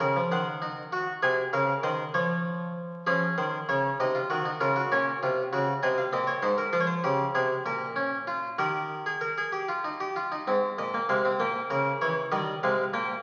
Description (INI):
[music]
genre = classical, baroque-style 3-part fugue for harpsichord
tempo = 65 BPM (dotted quarters)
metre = 6/8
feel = straight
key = Db major, Ab major from 6.7 s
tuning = A4 = 435 Hz
[part]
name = harpsichord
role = solo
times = 0.0-13.1 s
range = Ab2 to Ab5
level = -28 LUFS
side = equal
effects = none
[sound]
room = wet recital hall reverb, RT60 1.6 s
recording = very old 78 rpm record, vinyl crackle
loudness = -28 LUFS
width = mono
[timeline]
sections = 0.0-3.1 A section; 3.1-10.5 B section; 10.5-13.2 C section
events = none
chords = 0.3 Cdim/Eb; 1.2 Ab/C; 2.1 Db/F; 3.1 Db; 4.0 Cdim; 4.9 Bbm; 5.8 Ab; 6.7 Fm; 7.7 Bbm; 8.6 Eb; 10.5 Ab; 11.4 Gdim7/Bb; 12.3 Eb